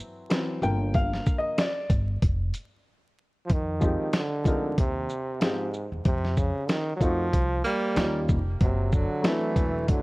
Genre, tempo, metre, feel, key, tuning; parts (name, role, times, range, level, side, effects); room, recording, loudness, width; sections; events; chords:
hip hop, jazz-hop; 94 BPM; 4/4; swing 60% on 16ths; A4 = 439 Hz
warm upright piano; accompaniment; 0.0-10.0 s; D3 to G5; -29 LUFS; left 1 dB
dusty soul sampler-style drum kit; drums; 0.3-10.0 s; hi-hat, kick drum, shaker, snare drum; -26 LUFS; equal
upright bass; bass; 0.6-10.0 s; E1 to F2; -29 LUFS; equal
brilliant trombone; melody; 3.5-10.0 s; Ab2 to G3; -29 LUFS; right 1 dB; analog delay
breathy tenor saxophone; second line; 7.6-10.0 s; F#3 to Bb3; -32 LUFS; right 2 dB; analog delay
light reverb, studio ambience; worn, warbling old tape, cassette tape, vinyl crackle, warbly pitch drift; -24 LUFS; side -22 dB against mid
0.0-3.5 A section; 3.5-10.0 B section
upright piano solo 0.0-3.5; break 2.9-3.5
0.0 Am6/E (rootless); 0.6 Gm7; 3.5 Fm9; 6.1 F7b9; 8.0 Eb9; 8.6 D7